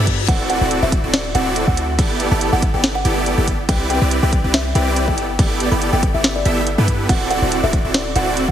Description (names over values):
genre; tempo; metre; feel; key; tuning
future bass; 141 BPM; 4/4; swing 54% on 16ths, half-time; G major; A4 = 439 Hz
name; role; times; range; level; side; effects
buzzing kalimba; melody; 0.0-8.5 s; B4 to B5; -24 LUFS; left 1 dB; sidechain pumping, digital delay
supersaw chords; riff; 0.0-8.5 s; B3 to E5; -20 LUFS; right 1 dB; sidechain pumping
warm 808-style bass; bass; 0.0-8.5 s; D1 to G2; -21 LUFS; equal; sidechain pumping
electronic kick drum; drums; 0.1-8.5 s; none; -18 LUFS; equal; none
trap drum kit; drums; 0.1-8.5 s; crash cymbal, hi-hat, snare drum; -22 LUFS; right 1 dB; none
room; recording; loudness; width
light reverb; heavily compressed radio sound, multiband compression; -15 LUFS; side -10 dB against mid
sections
0.0-8.5 A section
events
none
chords
0.3 D9; 2.0 G69; 3.7 Cmaj9; 5.2 G69; 7.1 D9